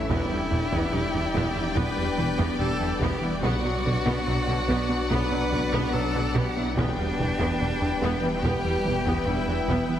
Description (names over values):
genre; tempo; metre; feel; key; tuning
cinematic, hybrid orchestral and electronic film score; 72 BPM; 4/4; straight; E minor; A4 = 440 Hz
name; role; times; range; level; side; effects
clear cello; melody; 0.0-10.0 s; D4 to B4; -31 LUFS; right 1 dB; digital delay
clear symphonic violin section; melody; 0.0-10.0 s; F#5 to G5; -34 LUFS; left 4 dB; none
clear symphonic violin section; second line; 0.0-10.0 s; B4 to D5; -36 LUFS; left 1 dB; none
granular cloud pad; sustained chords; 0.0-10.0 s; E3 to E5; -34 LUFS; equal; none
mellow French horn section; sustained chords; 0.0-9.9 s; F#3 to D4; -34 LUFS; left 4 dB; none
punchy sub bass; bass; 0.0-10.0 s; E1 to B1; -36 LUFS; equal; none
clear symphonic viola section; accompaniment; 0.1-9.9 s; D3 to B3; -33 LUFS; right 1 dB; none
soft round pluck; arpeggios; 0.1-9.8 s; E3 to B4; -35 LUFS; left 2 dB; none
round analog bass; riff; 0.1-10.0 s; E2 to B3; -32 LUFS; right 1 dB; none
rich symphonic cello section; bass; 0.1-9.8 s; E2 to B2; -33 LUFS; right 1 dB; none
rich symphonic double bass section; bass; 0.1-9.8 s; E1 to B1; -32 LUFS; right 2 dB; none
taiko ensemble; drums; 0.1-10.0 s; none; -35 LUFS; left 1 dB; none
room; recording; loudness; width
wet scoring stage reverb, RT60 1.9 s; heavily compressed radio sound, multiband compression; -23 LUFS; side -10 dB against mid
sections
0.0-10.0 A section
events
none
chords
0.1 Em7; 3.4 Bm; 6.8 Em7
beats
| 0.10 0.94 1.77 2.60 | 3.44 4.27 5.10 5.94 | 6.77 7.60 8.44 9.27